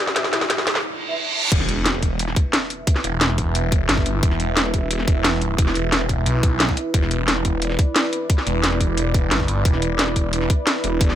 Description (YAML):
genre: dark technical drum and bass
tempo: 177 BPM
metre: 4/4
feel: straight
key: E minor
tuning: A4 = 439 Hz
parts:
  - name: dark analog pad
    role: sustained chords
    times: 0.0-11.2 s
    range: E4 to E5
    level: -27 LUFS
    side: right 1 dB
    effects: chorus, sidechain pumping
  - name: riser, reverse cymbal and impact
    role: sound effects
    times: 0.0-2.9 s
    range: none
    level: -26 LUFS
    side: right 2 dB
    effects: none
  - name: drum and bass drum kit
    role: drums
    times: 0.1-11.2 s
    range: crash cymbal, hi-hat, snare drum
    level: -21 LUFS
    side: equal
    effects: none
  - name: felt-muted upright piano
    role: arpeggios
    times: 0.2-0.6 s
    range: E4 to E5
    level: -31 LUFS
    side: left 3 dB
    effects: sidechain pumping, ping-pong delay
  - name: mellow brass ensemble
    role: stabs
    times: 0.2-1.1 s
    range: E4 to E5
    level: -33 LUFS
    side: right 1 dB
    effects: ping-pong delay
  - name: phased detuned saw bass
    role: bass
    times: 1.5-11.2 s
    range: E1 to B1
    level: -22 LUFS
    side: equal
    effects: phaser, overdrive, sidechain pumping
  - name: electronic kick drum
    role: drums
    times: 1.5-11.1 s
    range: none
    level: -19 LUFS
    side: equal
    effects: none
room: digital ambience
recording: none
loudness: -18 LUFS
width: side -11 dB against mid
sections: 0.0-1.5 A section; 1.5-11.2 B section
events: build-up 0.0-1.5; drum fill 0.0-0.8; riser 0.0-0.8; break 0.8-1.5; reverse cymbal 0.8-1.5; drop 1.5-11.2; impact 1.5-2.9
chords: 0.0 E5